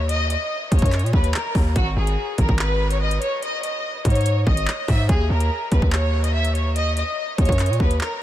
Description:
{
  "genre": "hip hop, drill",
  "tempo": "144 BPM",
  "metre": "4/4",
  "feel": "half-time",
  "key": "G# minor",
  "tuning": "A4 = 438 Hz",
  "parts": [
    { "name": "clear studio violin section", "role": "melody", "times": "0.0-8.2 s", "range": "F#4 to E5", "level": "-24 LUFS", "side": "left 1 dB", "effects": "low-pass filter" },
    { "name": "distorted 808-style bass", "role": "bass", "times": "0.0-8.0 s", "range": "G#1 to A#2", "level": "-20 LUFS", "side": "equal", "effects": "distortion" },
    { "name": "drill drum kit", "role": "drums", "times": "0.1-8.1 s", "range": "handclaps, hi-hat, kick drum", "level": "-23 LUFS", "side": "equal", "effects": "none" }
  ],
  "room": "light reverb",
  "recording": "none",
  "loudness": "-18 LUFS",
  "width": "side -13 dB against mid",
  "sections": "0.0-8.2 A section",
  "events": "none",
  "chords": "0.0 D#m7; 1.8 G#5; 5.1 D#7(no3)",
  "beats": "| 0.09 0.51 0.93 1.34 | 1.76 2.18 2.59 3.01 | 3.43 3.84 4.26 4.68 | 5.09 5.51 5.93 6.34 | 6.76 7.18 7.59 8.01"
}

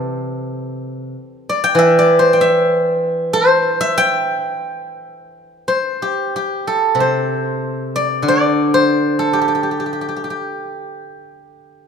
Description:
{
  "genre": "chinese traditional, Chinese solo plucked strings",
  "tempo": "87-100 BPM",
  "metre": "2/4",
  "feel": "rubato",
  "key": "G zhi mode",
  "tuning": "A4 = 443 Hz",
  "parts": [
    { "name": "steel-string zither", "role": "solo", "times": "0.0-11.9 s", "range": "C3 to G5", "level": "-15 LUFS", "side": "equal", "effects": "none" }
  ],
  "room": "moderate concert hall reverb, RT60 2.2 s",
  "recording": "minimal, uncompressed stereo recording",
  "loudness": "-14 LUFS",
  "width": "side -6 dB against mid",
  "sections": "0.0-5.7 A section; 5.7-11.9 B section",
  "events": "none",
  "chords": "none",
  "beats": "| 0.48 1.14 | 1.78 2.40 | 3.03 3.66 | 4.32 4.99 | 5.67 6.33 | 6.98 7.62 | 8.25 8.86 | 9.47 10.11 | 10.78 11.46"
}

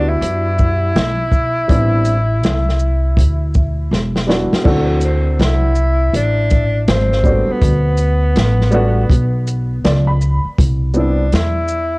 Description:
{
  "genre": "hip hop, jazz-hop",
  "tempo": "81 BPM",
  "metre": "4/4",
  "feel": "swing 63% on 16ths",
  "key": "unclear",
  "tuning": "A4 = 440 Hz",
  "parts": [
    { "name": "breathy tenor saxophone", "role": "melody", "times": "0.0-12.0 s", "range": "B3 to E4", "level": "-20 LUFS", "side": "equal", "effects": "cassette tape, analog delay" },
    { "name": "warm upright piano", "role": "accompaniment", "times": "0.0-11.2 s", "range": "G3 to B5", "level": "-19 LUFS", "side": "equal", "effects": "cassette tape" },
    { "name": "upright bass", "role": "bass", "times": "0.0-12.0 s", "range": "E1 to F#2", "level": "-16 LUFS", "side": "equal", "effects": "none" },
    { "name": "open jazz drum kit", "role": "drums", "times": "0.2-11.9 s", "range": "crash cymbal, hi-hat, kick drum, shaker, snare drum", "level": "-17 LUFS", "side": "equal", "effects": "cassette tape" }
  ],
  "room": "little or no reverb",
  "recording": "home recording on cassette",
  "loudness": "-12 LUFS",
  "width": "side -25 dB against mid",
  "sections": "0.0-4.7 A section; 4.7-12.0 B section",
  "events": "drum fill 3.9-4.7; upright piano fill 9.5-10.6",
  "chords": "0.0 Em9; 1.7 Am11; 3.9 Em9; 4.7 D9; 6.9 G#maj7; 7.6 Gmaj9; 10.6 Cmaj7",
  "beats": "0.21 0.95 | 1.69 2.43 3.17 3.92 | 4.66 5.40 6.14 6.88 | 7.62 8.36 9.10 9.84 | 10.58 11.32"
}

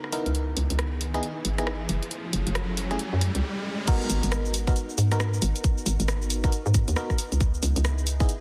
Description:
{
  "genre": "UK garage, two-step garage",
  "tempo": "136 BPM",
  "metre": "4/4",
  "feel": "swing 62% on 16ths",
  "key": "G# minor",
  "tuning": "A4 = 437 Hz",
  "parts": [
    { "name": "soft string machine", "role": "sustained chords", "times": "0.0-8.4 s", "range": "A3 to A#4", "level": "-41 LUFS", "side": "equal", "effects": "ensemble chorus, sidechain pumping" },
    { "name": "punchy analog drum machine", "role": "drums", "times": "0.0-8.4 s", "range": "cabasa, crash cymbal, hi-hat, rim click", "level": "-34 LUFS", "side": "equal", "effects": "high-pass filter on hats, soft clipping on snare, high-pass filter on snare, high-pass filter on cymbals, high-pass filter on perc, high-pass filter on room" },
    { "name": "riser", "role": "sound effects", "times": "0.0-3.9 s", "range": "none", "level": "-38 LUFS", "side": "equal", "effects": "none" },
    { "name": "FM electric piano", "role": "stabs", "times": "0.1-8.3 s", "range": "A3 to A#4", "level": "-35 LUFS", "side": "equal", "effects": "chorus, low-pass filter, tape echo" },
    { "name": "hollow knocking FM bass", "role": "bass", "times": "0.3-8.3 s", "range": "F#1 to G#2", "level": "-28 LUFS", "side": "equal", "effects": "tube saturation" },
    { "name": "electronic kick drum", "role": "drums", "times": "3.9-8.3 s", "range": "none", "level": "-26 LUFS", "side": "equal", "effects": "none" }
  ],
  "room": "light reverb",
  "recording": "dense, heavily limited modern master",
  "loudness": "-26 LUFS",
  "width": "mono",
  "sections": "0.0-3.9 A section; 3.9-8.4 B section",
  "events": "build-up 0.0-3.9; riser 0.0-3.9; break 3.4-3.9; drop 3.9-8.4",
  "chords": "0.1 C#m9; 1.9 F#m9; 3.9 G#m9; 7.2 C#m9",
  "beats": "| 0.35 0.79 1.23 1.67 | 2.11 2.55 2.99 3.44 | 3.88 4.32 4.76 5.20 | 5.64 6.08 6.52 6.96 | 7.41 7.85 8.29"
}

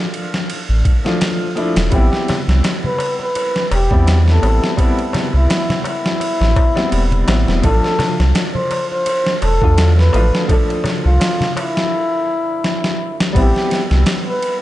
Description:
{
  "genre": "trip hop",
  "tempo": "84 BPM",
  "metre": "4/4",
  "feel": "swing 56% on 16ths",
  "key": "A minor",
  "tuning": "A4 = 442 Hz",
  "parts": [
    { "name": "bright upright piano", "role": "accompaniment", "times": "0.0-14.6 s", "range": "D3 to A4", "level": "-22 LUFS", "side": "left 1 dB", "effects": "tremolo, low-pass filter, tape echo" },
    { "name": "boom bap sampler-style drum kit", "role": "drums", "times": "0.1-14.6 s", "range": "kick drum, ride cymbal, snare drum", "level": "-19 LUFS", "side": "equal", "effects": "none" },
    { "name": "warm sub bass", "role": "bass", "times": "0.7-14.0 s", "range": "E1 to E2", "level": "-13 LUFS", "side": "equal", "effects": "tube saturation" },
    { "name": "trumpet with bucket mute", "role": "melody", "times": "1.9-14.6 s", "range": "E4 to C5", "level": "-20 LUFS", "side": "equal", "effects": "tape echo" },
    { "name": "darbuka", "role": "percussion", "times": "1.9-11.9 s", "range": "none", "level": "-26 LUFS", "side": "left 2 dB", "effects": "none" }
  ],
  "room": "small room ambience",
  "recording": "dark, warm production, nothing above 10.7 kHz",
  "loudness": "-13 LUFS",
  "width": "side -15 dB against mid",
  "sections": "0.0-13.4 A section; 13.4-14.6 A section",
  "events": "break 11.9-13.4; drum fill 12.6-13.4",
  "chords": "0.0 Dm; 1.9 Am9 (rootless); 7.6 Dm; 13.4 Am9",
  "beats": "0.49 1.21 | 1.92 2.64 3.35 4.07 | 4.78 5.50 6.21 6.92 | 7.64 8.35 9.07 9.78 | 10.49 11.21 11.92 12.64 | 13.35 14.07"
}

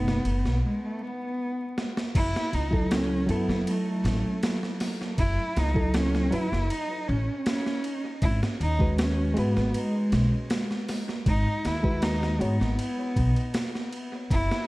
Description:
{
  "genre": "trip hop",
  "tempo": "79 BPM",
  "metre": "4/4",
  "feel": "straight",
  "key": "F# dorian",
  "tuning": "A4 = 442 Hz",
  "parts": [
    { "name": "warm cello", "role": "melody", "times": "0.0-14.7 s", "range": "G#3 to E4", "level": "-30 LUFS", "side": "equal", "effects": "tape echo" },
    { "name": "bright reed electric piano", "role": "accompaniment", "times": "0.0-12.6 s", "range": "B2 to C#5", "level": "-30 LUFS", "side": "equal", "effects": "harmonic tremolo, dub echo" },
    { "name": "upright bass", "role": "bass", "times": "0.0-14.5 s", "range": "F#1 to G#2", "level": "-27 LUFS", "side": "equal", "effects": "none" },
    { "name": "boom bap sampler-style drum kit", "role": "drums", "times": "0.1-14.7 s", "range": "crash cymbal, hi-hat, kick drum, ride cymbal, snare drum", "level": "-30 LUFS", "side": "equal", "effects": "none" }
  ],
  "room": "little or no reverb",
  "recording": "echo-heavy mix, vinyl crackle",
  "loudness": "-24 LUFS",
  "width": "side -20 dB against mid",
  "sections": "0.0-2.1 A section; 2.1-14.7 B section",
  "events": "break 0.6-2.1; drum fill 1.8-2.1",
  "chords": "0.0 B7; 2.1 F#m7; 8.2 G#m7",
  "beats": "0.62 1.38 | 2.14 2.90 3.66 4.42 | 5.18 5.94 6.70 7.46 | 8.22 8.98 9.74 10.50 | 11.26 12.02 12.78 13.54 | 14.29"
}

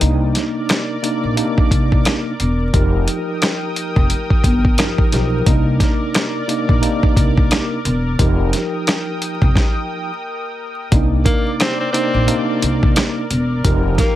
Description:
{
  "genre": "hip hop, boom-bap hip-hop",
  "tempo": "88 BPM",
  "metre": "4/4",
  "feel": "swing 58% on 16ths",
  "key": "C minor",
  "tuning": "A4 = 440 Hz",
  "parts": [
    { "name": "mellow tine electric piano", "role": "accompaniment", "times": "0.0-14.2 s", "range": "C3 to Bb4", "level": "-21 LUFS", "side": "equal", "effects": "medium stereo tremolo, high-pass filter, low-pass filter, plate reverb" },
    { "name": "lush unison pad", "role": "sustained chords", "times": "0.0-14.2 s", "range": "Bb4 to Eb6", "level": "-26 LUFS", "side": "left 1 dB", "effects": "chorus, high-pass filter, low-pass filter, plate reverb" },
    { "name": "upright bass", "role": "bass", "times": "0.0-13.9 s", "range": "E1 to C2", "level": "-18 LUFS", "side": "equal", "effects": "none" },
    { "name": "dusty soul sampler-style drum kit", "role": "drums", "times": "0.0-14.2 s", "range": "hi-hat, kick drum, rim click, snare drum", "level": "-16 LUFS", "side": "equal", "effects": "none" },
    { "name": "edgy tenor saxophone", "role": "melody", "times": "11.2-14.2 s", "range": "Bb3 to C4", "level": "-22 LUFS", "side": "equal", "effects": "high-pass filter, low-pass filter, ping-pong delay, plate reverb" }
  ],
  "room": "light reverb",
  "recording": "vinyl crackle",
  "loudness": "-14 LUFS",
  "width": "side -13 dB against mid",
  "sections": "0.0-10.9 A section; 10.9-14.2 B section",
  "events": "break 0.0-1.4; stop 9.6-10.9",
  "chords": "0.0 Cm9; 2.7 F9sus4; 5.5 Cm9; 8.2 F9sus4; 10.9 Cm9; 13.6 F9sus4",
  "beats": "| 0.01 0.69 1.37 2.06 | 2.74 3.42 4.10 4.78 | 5.46 6.15 6.83 7.51 | 8.19 8.87 9.56 10.24 | 10.92 11.60 12.28 12.96 | 13.65"
}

